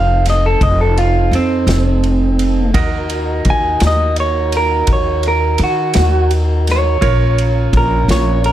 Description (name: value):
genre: slow blues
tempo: 56 BPM (dotted quarters)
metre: 12/8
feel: straight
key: unclear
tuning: A4 = 440 Hz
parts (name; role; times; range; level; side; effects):
- electric guitar through a small old amp; melody; 0.0-8.5 s; C4 to Ab5; -16 LUFS; right 2 dB; slapback echo
- bright grand piano; accompaniment; 0.0-8.5 s; Eb4 to Eb5; -27 LUFS; right 8 dB; none
- tonewheel organ; sustained chords; 0.0-8.5 s; C4 to Bb4; -23 LUFS; equal; overdrive, slow rotary speaker
- upright bass; bass; 0.0-8.5 s; F1 to Eb3; -15 LUFS; equal; none
- vintage drum kit; drums; 0.3-8.5 s; kick drum, ride cymbal, snare drum; -21 LUFS; equal; none
room: little or no reverb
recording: none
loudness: -12 LUFS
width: side -12 dB against mid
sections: 0.0-8.5 A section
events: clean electric guitar solo 0.0-8.5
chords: 0.0 F7; 2.8 Ebm; 7.0 Bbm